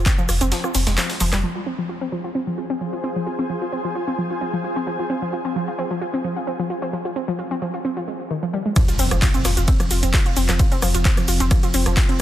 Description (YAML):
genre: driving peak-time techno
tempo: 131 BPM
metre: 4/4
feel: straight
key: F minor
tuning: A4 = 440 Hz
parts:
  - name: saturated sub bass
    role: bass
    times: 0.0-1.4, 9.0-12.0 s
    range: F1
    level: -21 LUFS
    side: equal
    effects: tube saturation, sidechain pumping, low-pass filter
  - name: warbly dusty pluck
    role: riff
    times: 0.1-12.1 s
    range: Eb3 to F4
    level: -24 LUFS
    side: equal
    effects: chorus, sidechain pumping, digital delay
  - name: breakbeat sampler-style drum kit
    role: drums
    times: 0.1-1.4, 8.8-12.1 s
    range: hi-hat, snare drum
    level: -32 LUFS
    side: left 1 dB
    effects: none
  - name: electronic kick drum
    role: drums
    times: 0.1-0.2, 8.8-12.1 s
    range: none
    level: -18 LUFS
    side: equal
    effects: small room ambience
  - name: techno drum kit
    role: drums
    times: 0.1-1.4, 8.8-12.2 s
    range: handclaps, hi-hat, ride cymbal, rim click, shaker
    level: -24 LUFS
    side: right 1 dB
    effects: sidechain pumping on perc, small room ambience, sidechain pumping on hats, sidechain pumping on cymbals
  - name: ethereal airy pad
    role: texture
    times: 2.2-8.3 s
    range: F4 to Ab5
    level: -30 LUFS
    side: equal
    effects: ensemble chorus, built-in reverb, sidechain pumping
  - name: analog drone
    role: drone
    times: 9.2-12.2 s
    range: F3 to C4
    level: -30 LUFS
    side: equal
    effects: chorus, sidechain pumping
  - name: impact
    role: sound effects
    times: 8.8-10.6 s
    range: none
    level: -28 LUFS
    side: equal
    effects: none
room: light reverb, digital ambience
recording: dense, heavily limited modern master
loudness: -19 LUFS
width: side -12 dB against mid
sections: 0.0-1.4 A section; 1.4-8.8 B section; 8.8-12.2 C section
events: kick drops out 0.5-1.4; drop 8.8-12.2; impact 8.8-10.6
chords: 0.0 N.C.; 1.4 Fm; 8.8 F5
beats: 0.06 0.52 0.98 | 1.43 1.89 2.35 2.81 | 3.27 3.72 4.18 4.64 | 5.10 5.56 6.01 6.47 | 6.93 7.39 7.85 8.30 | 8.76 9.22 9.68 10.14 | 10.59 11.05 11.51 11.97